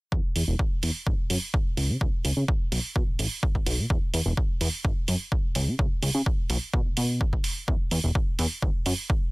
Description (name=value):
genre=filtered disco house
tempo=127 BPM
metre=4/4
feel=straight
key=unclear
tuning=A4 = 440 Hz
part: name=plucky analog bass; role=bass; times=0.1-8.9 s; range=E1 to C#3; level=-26 LUFS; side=equal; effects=sidechain pumping, low-pass filter
part: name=electronic kick drum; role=drums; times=0.1-9.2 s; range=none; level=-26 LUFS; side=equal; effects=none
part: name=electronic hi-hat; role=drums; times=0.4-9.0 s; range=none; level=-30 LUFS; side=right 3 dB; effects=sidechain pumping on hats
room=little or no reverb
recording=dense, heavily limited modern master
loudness=-24 LUFS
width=side -25 dB against mid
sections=0.1-9.3 A section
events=filter sweep on analog synth bass 0.1-9.3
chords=none